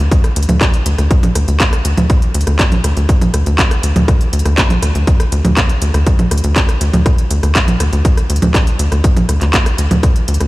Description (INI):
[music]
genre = melodic techno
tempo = 121 BPM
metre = 4/4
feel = straight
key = unclear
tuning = A4 = 439 Hz
[part]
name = tight sequencer bass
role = bass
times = 0.0-10.5 s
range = D2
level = -13 LUFS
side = equal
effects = sidechain pumping
[part]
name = electronic kick drum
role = drums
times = 0.1-10.1 s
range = none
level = -12 LUFS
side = equal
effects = overdrive, small room ambience
[part]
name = techno drum kit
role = drums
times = 0.1-10.5 s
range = congas, handclaps, hi-hat, rim click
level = -17 LUFS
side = right 1 dB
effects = overdrive, small room ambience
[sound]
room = little or no reverb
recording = played on a big sound system in a bare room, stone room reverb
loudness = -11 LUFS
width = side -19 dB against mid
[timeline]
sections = 0.0-10.5 A section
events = none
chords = none